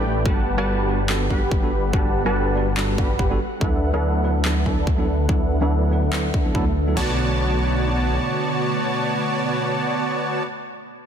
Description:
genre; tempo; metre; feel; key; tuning
future bass; 143 BPM; 4/4; swing 55% on 16ths, half-time; B minor; A4 = 440 Hz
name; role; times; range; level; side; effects
tine electric piano; accompaniment; 0.0-10.5 s; D3 to B4; -27 LUFS; right 2 dB; medium tremolo, sidechain pumping, dub echo
ethereal airy pad; sustained chords; 0.0-10.4 s; B2 to C#6; -32 LUFS; equal; ensemble chorus, built-in reverb, phaser, sidechain pumping
supersaw stab; riff; 0.0-10.4 s; G3 to B5; -24 LUFS; equal; sidechain pumping, low-pass filter, dub echo
wide detuned saw bass; bass; 0.0-8.2 s; G1 to D2; -23 LUFS; equal; chorus, sidechain pumping
dubstep drum kit; drums; 0.3-7.1 s; kick drum, snare drum, toms; -22 LUFS; equal; overdrive
electronic handclaps; drums; 1.1-6.2 s; none; -30 LUFS; left 1 dB; overdrive
room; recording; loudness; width
light reverb, digital ambience; dense, heavily limited modern master; -19 LUFS; side -8 dB against mid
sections
0.0-7.0 A section; 7.0-10.3 B section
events
filter sweep on detuned saw bass 0.0-7.0; filter sweep on supersaw synth 0.0-7.0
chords
0.3 Gmaj9; 3.4 D69; 7.0 Bm9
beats
| 0.26 0.67 1.09 1.51 | 1.93 2.35 2.77 3.19 | 3.61 4.03 4.45 4.87 | 5.29 5.71 6.13 6.55 | 6.97 7.39 7.81 8.23 | 8.65 9.07 9.48 9.90

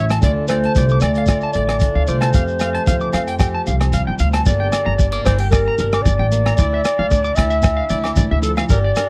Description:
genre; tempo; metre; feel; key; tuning
highlife guitar band; 113 BPM; 4/4; straight; D minor; A4 = 436 Hz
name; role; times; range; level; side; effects
breathy clarinet; melody; 0.0-9.1 s; Bb4 to E5; -23 LUFS; equal; none
breathy trombone; second line; 0.0-3.9 s; A3 to C#4; -31 LUFS; equal; none
picked plugged-in swing-style acoustic guitar; accompaniment; 0.0-9.1 s; E2 to G4; -29 LUFS; equal; none
electric guitar at the edge of break-up; arpeggios; 0.0-9.0 s; A4 to D6; -28 LUFS; equal; tremolo, tape echo
upright bass; bass; 0.0-8.9 s; G1 to F2; -22 LUFS; equal; none
crunchy breakbeat drum kit; drums; 0.1-9.1 s; hi-hat, kick drum, rim click; -20 LUFS; equal; none
agogo bells; percussion; 0.1-9.1 s; none; -32 LUFS; equal; none
shekere; percussion; 0.1-9.1 s; none; -27 LUFS; equal; none
room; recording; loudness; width
little or no reverb; dry, close 1970s-style studio recording; -17 LUFS; mono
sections
0.0-4.5 A section; 4.5-9.1 B section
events
none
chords
0.2 Dm; 2.4 Fadd9; 4.5 Gm; 6.6 Dmadd9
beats
| 0.23 0.76 1.29 1.82 | 2.35 2.88 3.41 3.94 | 4.47 5.00 5.53 6.06 | 6.59 7.12 7.65 8.18 | 8.70

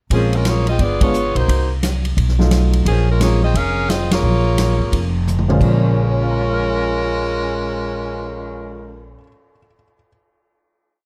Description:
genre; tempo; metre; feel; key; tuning
jazz, big band swing; 175 BPM; 4/4; swing 63% on 8ths; Bb minor; A4 = 439 Hz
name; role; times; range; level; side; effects
warm saxophone section; melody; 0.1-9.1 s; F3 to F5; -23 LUFS; equal; none
warm grand piano; accompaniment; 0.1-3.4, 5.5-10.1 s; Bb2 to F6; -25 LUFS; equal; none
upright bass; bass; 0.1-9.1 s; F1 to C2; -21 LUFS; equal; none
swinging big-band drum kit; drums; 0.1-8.3 s; crash cymbal, cymbal swell, hi-hat, kick drum, ride cymbal, snare drum, toms; -24 LUFS; equal; none
room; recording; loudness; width
little or no reverb; close, detailed microphones; -17 LUFS; mono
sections
0.1-5.6 A section; 5.6-8.3 final chord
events
band accent 1.0, 4.1; drum fill 5.3-5.6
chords
0.1 Bbm7; 0.8 G7b9; 1.5 Cm7b5; 2.2 B7#11; 2.9 Bbm7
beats
| 0.10 0.45 0.79 1.14 | 1.48 1.83 2.17 2.52 | 2.86 3.20 3.55 3.89 | 4.23 4.58 4.92 5.26 | 5.61 5.95 6.29 6.63 | 6.97 7.32 7.66 8.00

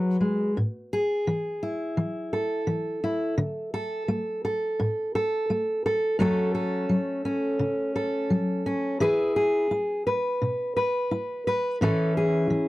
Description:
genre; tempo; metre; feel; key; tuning
folk; 86 BPM; 4/4; straight; A major; A4 = 439 Hz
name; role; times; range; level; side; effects
fingerpicked steel-string acoustic guitar; solo; 0.0-12.7 s; F#2 to B4; -24 LUFS; equal; none
room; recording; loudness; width
little or no reverb; dry, close 1970s-style studio recording; -24 LUFS; side -17 dB against mid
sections
0.6-12.7 A section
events
none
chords
0.0 Eadd9 (rootless); 0.6 A5; 3.4 D5; 6.2 F#m; 9.0 E; 11.8 A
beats
| 0.56 1.27 1.98 2.68 | 3.39 4.09 4.79 5.49 | 6.20 6.90 7.60 8.30 | 9.00 9.70 10.40 11.10 | 11.80 12.50

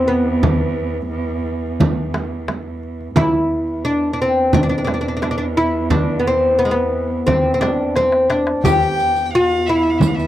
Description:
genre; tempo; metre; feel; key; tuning
Arabic maqam ensemble; 88 BPM; 4/4; straight; E maqam saba; A4 = 437 Hz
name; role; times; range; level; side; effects
oud; melody; 0.0-10.3 s; G#3 to G4; -16 LUFS; left 1 dB; none
dark cello; drone; 0.0-10.3 s; E2; -24 LUFS; right 2 dB; stereo widening
darbuka; percussion; 0.1-10.3 s; none; -22 LUFS; left 3 dB; none
frame drum; percussion; 0.4-10.2 s; none; -20 LUFS; right 3 dB; none
rich violin; second line; 8.6-10.3 s; E5 to G5; -24 LUFS; left 3 dB; none
riq; percussion; 8.7-10.3 s; none; -28 LUFS; right 12 dB; none
room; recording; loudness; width
moderate booth ambience, RT60 0.2 s; dry, close 1970s-style studio recording; -15 LUFS; side -13 dB against mid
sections
0.0-10.3 A section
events
drum fill 8.0-8.6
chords
none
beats
| 0.43 1.11 1.80 2.48 | 3.17 3.85 4.54 5.22 | 5.91 6.59 7.27 7.96 | 8.64 9.32 10.01

